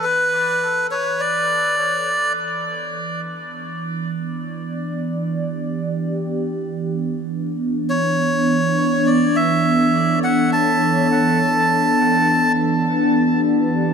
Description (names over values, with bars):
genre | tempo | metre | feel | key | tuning
ambient dub | 103 BPM | 4/4 | swing 55% on 16ths | E dorian | A4 = 440 Hz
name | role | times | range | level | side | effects
melodica | melody | 0.0-2.3, 7.9-12.5 s | B4 to A5 | -19 LUFS | equal | dub echo
warm analog pad | sustained chords | 0.0-13.9 s | E3 to D5 | -20 LUFS | right 1 dB | chorus
room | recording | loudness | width
moderate plate reverb, RT60 3.3 s | echo-heavy mix | -17 LUFS | side -6 dB against mid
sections
0.0-13.9 A section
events
filter sweep on analog synth pad 0.0-13.9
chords
0.0 Bm7; 3.5 Em7; 8.2 Bm11; 12.9 Em7